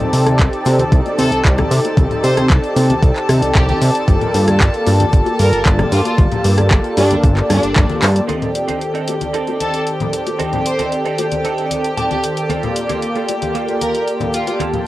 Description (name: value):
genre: nu-disco, nu disco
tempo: 114 BPM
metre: 4/4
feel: straight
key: C dorian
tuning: A4 = 440 Hz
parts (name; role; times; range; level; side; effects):
- warm analog pad; accompaniment; 0.0-14.9 s; Eb3 to A5; -20 LUFS; equal; chorus, cassette tape, analog delay
- clear studio string section; sustained chords; 0.0-14.9 s; G4 to A5; -24 LUFS; equal; sidechain pumping, cassette tape
- house drum kit; drums; 0.0-14.8 s; handclaps, hi-hat, rim click; -22 LUFS; equal; overdrive
- cabasa, congas and bongos; percussion; 0.0-14.8 s; none; -26 LUFS; left 4 dB; none
- fat analog bass; bass; 0.1-8.2 s; G1 to C3; -15 LUFS; equal; none
- electronic kick drum; drums; 0.4-7.9 s; none; -13 LUFS; equal; overdrive
- bright studio violin section; melody; 1.2-14.6 s; D4 to C5; -23 LUFS; equal; tape echo
- direct-recorded clean electric guitar; riff; 8.3-14.8 s; Bb3 to A5; -25 LUFS; right 6 dB; ensemble chorus, low-pass filter, cassette tape, analog delay
room: moderate booth ambience, RT60 0.2 s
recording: home recording on cassette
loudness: -13 LUFS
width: side -16 dB against mid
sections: 0.0-8.3 A section; 8.3-14.9 B section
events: drum fill 8.0; band accent 8.0; clean electric guitar fill 11.7-12.5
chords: 0.0 Cm69; 4.1 Gm9; 8.3 Cm69; 12.5 Gm9